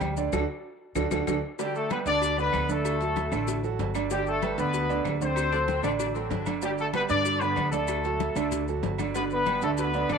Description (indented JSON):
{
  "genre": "latin, salsa",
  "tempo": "190 BPM",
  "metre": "4/4",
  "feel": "straight",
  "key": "G major",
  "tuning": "A4 = 440 Hz",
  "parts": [
    { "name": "warm concert grand piano", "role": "accompaniment", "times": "0.0-10.2 s", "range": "D3 to G5", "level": "-30 LUFS", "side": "right 10 dB", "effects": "none" },
    { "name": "upright bass", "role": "bass", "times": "0.0-10.2 s", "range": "G1 to G2", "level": "-32 LUFS", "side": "left 2 dB", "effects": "none" },
    { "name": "claves", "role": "percussion", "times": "0.0-10.2 s", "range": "none", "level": "-41 LUFS", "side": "left 12 dB", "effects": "none" },
    { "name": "congas", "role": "percussion", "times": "0.0-10.2 s", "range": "none", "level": "-36 LUFS", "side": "left 15 dB", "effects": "none" },
    { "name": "cowbell", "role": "percussion", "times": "0.0-10.2 s", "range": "none", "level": "-38 LUFS", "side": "left 13 dB", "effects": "none" },
    { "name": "maracas", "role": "percussion", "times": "0.0-10.2 s", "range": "none", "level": "-43 LUFS", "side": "left 16 dB", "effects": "none" },
    { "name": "timbales and agogo bells", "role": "percussion", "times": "0.0-10.2 s", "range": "none", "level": "-39 LUFS", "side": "right 10 dB", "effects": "none" },
    { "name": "warm horn section", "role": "melody", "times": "1.6-10.2 s", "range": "G3 to D5", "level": "-27 LUFS", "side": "left 3 dB", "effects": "slapback echo" },
    { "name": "clear saxophone section", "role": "second line", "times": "5.5-6.5 s", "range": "C4 to D4", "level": "-35 LUFS", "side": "left 12 dB", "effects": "none" }
  ],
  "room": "moderate spring reverb, RT60 1.4 s",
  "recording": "1960s-style stereo with parts hard left and right",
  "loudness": "-25 LUFS",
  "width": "side -6 dB against mid",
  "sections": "0.0-1.6 A section; 1.6-10.2 B section",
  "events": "band accent 0.3-1.6; drum fill 0.6-1.6",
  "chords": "0.3 D; 1.6 G; 2.8 D; 4.1 G; 5.4 D7; 6.6 G; 7.9 D; 9.2 G"
}